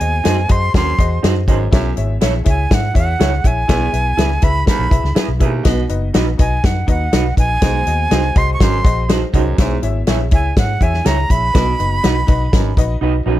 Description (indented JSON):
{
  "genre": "uptempo 1960s-style soul",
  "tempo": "122 BPM",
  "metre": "4/4",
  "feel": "straight",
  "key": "B major",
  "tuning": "A4 = 440 Hz",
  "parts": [
    { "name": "breathy bright jazz flute", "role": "melody", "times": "0.0-13.0 s", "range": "F#5 to C#6", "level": "-20 LUFS", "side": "right 2 dB", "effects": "none" },
    { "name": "warm upright piano", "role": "accompaniment", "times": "0.0-13.4 s", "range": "B2 to F#5", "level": "-24 LUFS", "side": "left 6 dB", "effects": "tube saturation" },
    { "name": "vintage muted fingered electric bass", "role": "bass", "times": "0.0-13.4 s", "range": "F#1 to B2", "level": "-18 LUFS", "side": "equal", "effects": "none" },
    { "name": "natural country drum kit", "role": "drums", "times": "0.0-12.9 s", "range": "hi-hat, kick drum, snare drum", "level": "-16 LUFS", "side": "equal", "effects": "none" },
    { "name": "electric guitar through a small old amp", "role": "stabs", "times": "0.2-13.3 s", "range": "D#4 to C#5", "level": "-22 LUFS", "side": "right 10 dB", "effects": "none" },
    { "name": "warm baritone saxophone", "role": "riff", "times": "0.7-13.4 s", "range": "D#2 to B2", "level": "-24 LUFS", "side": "right 7 dB", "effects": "none" }
  ],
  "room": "little or no reverb",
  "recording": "dark, warm production",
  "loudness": "-13 LUFS",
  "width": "side -14 dB against mid",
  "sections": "0.0-13.4 A section",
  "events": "none",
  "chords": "0.0 G#7; 1.7 C#m; 3.7 E/B; 5.7 B; 7.6 G#7/B; 9.6 C#m; 11.5 B"
}